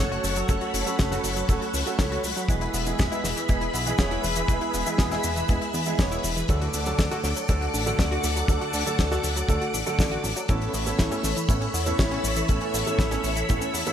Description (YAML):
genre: italo disco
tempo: 120 BPM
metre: 4/4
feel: straight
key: unclear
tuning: A4 = 440 Hz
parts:
  - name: string machine, full ensemble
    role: sustained chords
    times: 0.0-13.9 s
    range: G#4 to D6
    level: -29 LUFS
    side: equal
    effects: ensemble chorus
  - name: analog pluck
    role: arpeggios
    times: 0.0-13.9 s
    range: E3 to A4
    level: -33 LUFS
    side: left 1 dB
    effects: chorus, cassette tape, digital delay
  - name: dark concert grand piano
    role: stabs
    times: 0.0-13.9 s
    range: A2 to D5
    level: -31 LUFS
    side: right 4 dB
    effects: digital delay
  - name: chorused synth bass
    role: bass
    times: 0.0-13.8 s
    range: E1 to E2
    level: -30 LUFS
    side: equal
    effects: none
  - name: damped 70s drum kit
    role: drums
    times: 0.1-13.9 s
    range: cabasa, hi-hat, snare drum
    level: -29 LUFS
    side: left 2 dB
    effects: none
  - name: kick drum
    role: drums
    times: 0.5-13.6 s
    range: none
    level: -24 LUFS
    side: equal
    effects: none
room: light reverb, studio reverb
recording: bright 1980s-style digital production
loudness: -22 LUFS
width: side -9 dB against mid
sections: 0.0-13.9 A section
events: none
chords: 0.0 F#m; 2.5 E; 6.5 D; 10.5 Aadd9